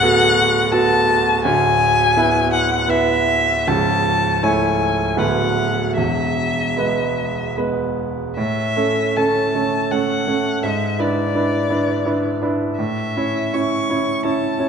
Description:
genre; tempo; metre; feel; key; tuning
classical, romantic duo for violin and grand piano; 71-87 BPM; 3/4; rubato; A major; A4 = 440 Hz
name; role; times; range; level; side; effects
rich violin; melody; 0.0-14.7 s; D5 to C#6; -20 LUFS; left 3 dB; none
bright grand piano; accompaniment; 0.0-14.7 s; C#1 to C#5; -18 LUFS; right 2 dB; none
room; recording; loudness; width
moderate scoring stage reverb, RT60 1.5 s; dark, warm production; -16 LUFS; side -6 dB against mid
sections
0.0-8.4 A section; 8.4-14.7 B section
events
none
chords
0.0 Bm7/D; 1.4 E7/D; 3.7 A/C#; 5.2 Bm7/D; 6.0 E; 8.4 A; 10.6 E7/G#; 12.8 A

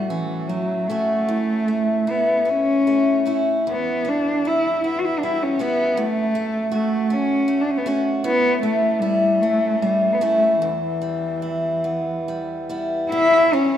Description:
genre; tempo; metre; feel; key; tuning
celtic folk, Celtic slow air; 47-54 BPM (dotted quarters); 6/8; rubato; E dorian; A4 = 440 Hz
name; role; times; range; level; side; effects
dark cello; melody; 0.0-13.8 s; E3 to F#4; -20 LUFS; left 1 dB; none
picked steel-string acoustic guitar; accompaniment; 0.0-13.8 s; E2 to F#4; -22 LUFS; equal; none
room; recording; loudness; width
moderate church reverb, RT60 2.9 s; minimal, uncompressed stereo recording; -18 LUFS; side -10 dB against mid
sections
0.0-13.1 A section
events
none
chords
0.0 F#m/A; 1.3 A; 3.7 Em; 6.0 F#m; 8.2 A; 10.6 Em; 13.1 Em7

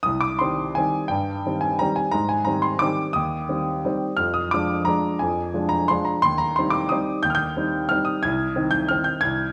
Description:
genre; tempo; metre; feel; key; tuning
classical, piano waltz; 165-190 BPM; 3/4; rubato; C minor; A4 = 441 Hz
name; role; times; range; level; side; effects
warm baby grand piano; solo; 0.0-9.5 s; C2 to Ab6; -23 LUFS; equal; none
room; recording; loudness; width
moderate recital hall reverb, RT60 1.5 s; worn, warbling old tape, cassette tape, warbly pitch drift; -23 LUFS; mono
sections
0.1-9.5 A section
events
none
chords
0.1 Cm; 2.1 Abmaj7; 4.2 Ddim/F; 6.2 Cm/Eb; 8.2 Ab/C

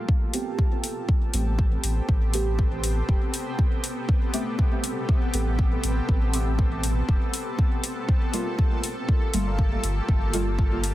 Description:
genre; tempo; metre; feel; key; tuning
dub techno; 120 BPM; 4/4; straight; A minor; A4 = 440 Hz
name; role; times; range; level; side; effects
granular cloud pad; sustained chords; 0.0-10.9 s; Bb3 to A4; -31 LUFS; equal; built-in reverb, sidechain pumping
bubbling stepped-filter texture; texture; 0.0-0.1, 8.1-10.9 s; A4; -42 LUFS; equal; none
electronic kick drum; drums; 0.1-10.7 s; none; -22 LUFS; equal; none
deep mellow chord stab; stabs; 0.3-10.5 s; G3 to G4; -32 LUFS; right 1 dB; chorus, phaser, sidechain pumping, dub echo
electronic hi-hat; drums; 0.3-10.9 s; none; -30 LUFS; left 2 dB; overdrive
warm sub bass; bass; 1.3-10.9 s; E1 to A1; -26 LUFS; equal; sidechain pumping
warbly lo-fi synth keys; riff; 9.5-9.7 s; A4 to F5; -40 LUFS; left 2 dB; chorus, sidechain pumping, dub echo
room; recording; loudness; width
digital ambience; dense, heavily limited modern master; -22 LUFS; side -15 dB against mid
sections
0.1-10.9 A section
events
none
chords
0.1 Am9; 8.1 Gm9

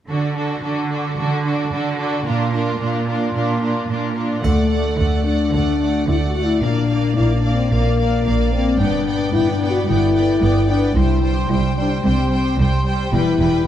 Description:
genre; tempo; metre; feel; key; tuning
cinematic, heroic adventure film score; 111 BPM; 4/4; straight; D mixolydian; A4 = 440 Hz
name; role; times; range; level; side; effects
rich chamber violin section; melody; 0.1-13.7 s; A4 to G5; -30 LUFS; equal; none
clear studio violin section; second line; 0.1-13.7 s; F4 to D5; -28 LUFS; left 1 dB; none
rich symphonic viola section; accompaniment; 0.1-13.7 s; G3 to D4; -25 LUFS; right 1 dB; none
rich symphonic cello section; bass; 0.1-13.5 s; C2 to D3; -23 LUFS; right 3 dB; none
dark French horn section; sustained chords; 4.4-13.6 s; A3 to F#4; -20 LUFS; left 4 dB; none
concert harp; arpeggios; 4.4-13.7 s; G2 to G5; -25 LUFS; left 6 dB; none
rich chamber double bass section; bass; 4.4-13.5 s; E1 to D2; -21 LUFS; right 2 dB; none
triangle; percussion; 4.4-5.5 s; none; -47 LUFS; left 3 dB; none
room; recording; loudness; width
moderate scoring stage reverb, RT60 2.0 s; dark, warm production; -16 LUFS; side -11 dB against mid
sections
0.1-4.4 A section; 4.4-13.7 B section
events
none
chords
0.1 D; 2.3 Bb; 4.4 D; 6.6 Bb; 8.8 G; 11.0 C; 13.1 Em

